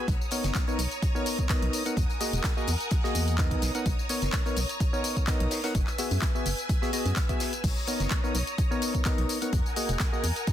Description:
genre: piano house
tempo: 127 BPM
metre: 4/4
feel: swing 53% on 16ths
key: B major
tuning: A4 = 441 Hz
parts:
  - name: string machine, violins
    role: sustained chords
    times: 0.0-10.5 s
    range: A#4 to E6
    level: -35 LUFS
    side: equal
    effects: ensemble chorus, sidechain pumping
  - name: percussive organ stab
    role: riff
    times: 0.0-10.3 s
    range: A#3 to F#5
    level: -32 LUFS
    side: left 1 dB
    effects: chorus, sidechain pumping, ping-pong delay
  - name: organ-like FM bass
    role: bass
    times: 0.1-10.3 s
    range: E1 to F#2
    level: -28 LUFS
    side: equal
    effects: sidechain pumping
  - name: electronic kick drum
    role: drums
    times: 0.1-10.5 s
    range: none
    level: -28 LUFS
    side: equal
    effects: none
  - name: house drum kit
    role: drums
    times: 0.1-10.5 s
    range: crash cymbal, handclaps, hi-hat, tambourine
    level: -33 LUFS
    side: left 2 dB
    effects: none
  - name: modern studio drum kit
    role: drums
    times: 0.1-10.5 s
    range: hi-hat, snare drum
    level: -43 LUFS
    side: left 3 dB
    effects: none
room: little or no reverb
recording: dense, heavily limited modern master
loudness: -25 LUFS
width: side -11 dB against mid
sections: 0.0-10.5 A section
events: none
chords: 0.1 Bmaj9; 2.0 Emaj9#11; 3.6 Bmaj9; 5.7 F#9sus4; 7.6 Bmaj9; 9.5 Emaj9#11

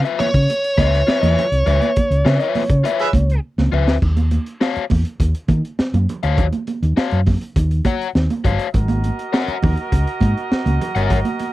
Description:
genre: funk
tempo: 102 BPM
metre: 4/4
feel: straight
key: unclear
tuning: A4 = 442 Hz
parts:
  - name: crunchy overdriven guitar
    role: accompaniment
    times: 0.0-11.2 s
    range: F4 to Gb5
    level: -21 LUFS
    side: left 9 dB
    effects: none
  - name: hollow-body short-scale fingered electric bass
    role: bass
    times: 0.0-11.2 s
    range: G1 to Eb3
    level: -17 LUFS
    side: equal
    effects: none
  - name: crunchy breakbeat drum kit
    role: drums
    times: 0.1-11.5 s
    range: crash cymbal, hi-hat, kick drum, snare drum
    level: -20 LUFS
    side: equal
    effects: none
  - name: nasal lead guitar with a parked wah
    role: melody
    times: 0.2-3.4 s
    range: Db5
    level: -20 LUFS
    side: right 1 dB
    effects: overdrive
  - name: congas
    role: percussion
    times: 0.2-11.5 s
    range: none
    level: -25 LUFS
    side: right 4 dB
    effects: none
  - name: warm horn section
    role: second line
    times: 3.0-3.1, 8.7-11.5 s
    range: Gb4 to E5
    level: -24 LUFS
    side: right 3 dB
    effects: none
room: little or no reverb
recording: dry, close 1970s-style studio recording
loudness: -15 LUFS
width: side -16 dB against mid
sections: 0.0-4.0 A section; 4.0-11.5 B section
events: band accent 1.7-4.0; drum fill 3.4-4.0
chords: 0.0 Db7#9; 4.0 Ebm9; 8.7 Ab9sus4

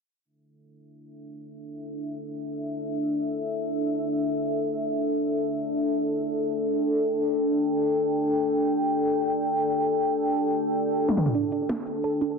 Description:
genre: dark technical drum and bass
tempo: free time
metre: none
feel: none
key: unclear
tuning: A4 = 440 Hz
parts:
  - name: deep dark ambient pad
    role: sustained chords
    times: 1.3-12.4 s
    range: D4 to G5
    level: -24 LUFS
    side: left 1 dB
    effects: chorus, built-in reverb
  - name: drum and bass drum kit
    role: drums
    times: 11.1-12.3 s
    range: hi-hat, snare drum, toms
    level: -26 LUFS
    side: equal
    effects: none
  - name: warbly dusty pluck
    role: arpeggios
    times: 11.3-12.3 s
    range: D4 to A4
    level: -29 LUFS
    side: right 8 dB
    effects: chorus, cassette tape, tape echo
room: moderate plate reverb, RT60 1.2 s, digital ambience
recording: dense, heavily limited modern master, low-pass filter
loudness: -24 LUFS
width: side -4 dB against mid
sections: 0.2-12.4 A section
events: filter sweep 0.2-12.4; drum fill 11.1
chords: 0.2 D5

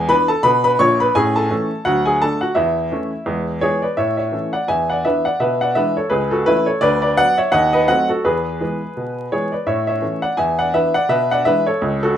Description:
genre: jazz, stride piano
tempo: 169 BPM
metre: 4/4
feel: swing 59% on 8ths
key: A major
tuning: A4 = 440 Hz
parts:
  - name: clear upright piano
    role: solo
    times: 0.0-12.2 s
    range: Bb1 to C#6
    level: -15 LUFS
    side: equal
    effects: none
room: wet studio reverb, RT60 0.6 s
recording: rough home demo mix, vinyl crackle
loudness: -15 LUFS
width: side -10 dB against mid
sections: 0.0-4.0 A section; 4.0-12.2 B section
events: none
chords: 0.0 E7; 1.1 A; 1.9 D; 2.6 A/E; 3.3 E; 4.0 A; 4.7 E5; 5.4 E7/B; 6.1 A/C#; 6.8 Bm/D; 7.5 D#dim7; 8.2 E; 9.7 A; 10.4 E5; 11.1 E7/B

